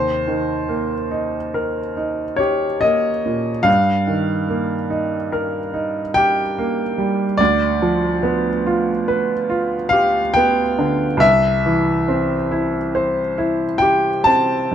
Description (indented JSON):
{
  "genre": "classical, romantic nocturne for solo piano",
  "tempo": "47 BPM (dotted quarters)",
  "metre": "9/8",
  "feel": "rubato",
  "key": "C major from 7.4 s",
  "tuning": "A4 = 440 Hz",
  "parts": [
    { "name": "clear baby grand piano", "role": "solo", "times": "0.0-14.7 s", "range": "C2 to A5", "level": "-16 LUFS", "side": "equal", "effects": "none" }
  ],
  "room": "light reverb",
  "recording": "dark, warm production",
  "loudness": "-16 LUFS",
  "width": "side -9 dB against mid",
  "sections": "0.0-14.7 A section",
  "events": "none",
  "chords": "0.0 Eb; 3.7 Eb/G; 7.4 G7/D; 11.2 C"
}